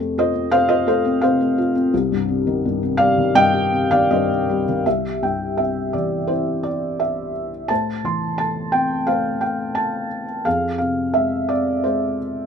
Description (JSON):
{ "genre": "classical, lyrical solo piano", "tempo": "86 BPM", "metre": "4/4", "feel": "rubato", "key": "C minor, C major from 4.9 s", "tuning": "A4 = 440 Hz", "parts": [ { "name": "felt-muted upright piano", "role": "solo", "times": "0.0-12.5 s", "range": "C2 to C6", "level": "-18 LUFS", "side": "left 1 dB", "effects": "none" } ], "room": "moderate studio reverb, RT60 0.6 s", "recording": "none", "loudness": "-18 LUFS", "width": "side -7 dB against mid", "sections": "0.0-4.9 A section; 4.9-12.5 B section", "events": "none", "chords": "0.0 F; 1.9 Cm; 4.9 C; 7.7 Am; 10.5 Fm", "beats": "0.52 1.22 | 1.92 2.62 3.34 4.10 | 4.86 5.57 6.29 7.00 | 7.71 8.40 9.09 9.77 | 10.46 11.15 11.85" }